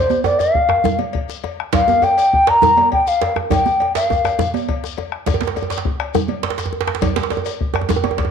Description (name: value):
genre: west african traditional, West African drum ensemble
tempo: 136 BPM (dotted quarters)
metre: 12/8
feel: straight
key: unclear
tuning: A4 = 439 Hz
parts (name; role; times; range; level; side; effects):
- mellow bansuri; melody; 0.0-4.5 s; C5 to Bb5; -14 LUFS; left 2 dB; slapback echo
- bombo; percussion; 0.1-8.3 s; none; -24 LUFS; left 3 dB; none
- congas; percussion; 0.1-8.3 s; none; -24 LUFS; right 12 dB; none
- shekere; percussion; 0.1-8.0 s; none; -34 LUFS; left 7 dB; none
- cowbell; percussion; 0.2-8.3 s; none; -30 LUFS; left 12 dB; none
- djembe; percussion; 0.2-8.3 s; none; -22 LUFS; right 8 dB; none
- djembe; percussion; 0.3-8.0 s; none; -24 LUFS; left 5 dB; none
room: moderate echo chamber reverb, RT60 1.3 s, studio reverb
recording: 1960s-style stereo with parts hard left and right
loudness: -15 LUFS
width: side -7 dB against mid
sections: 0.0-8.3 A section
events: none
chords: none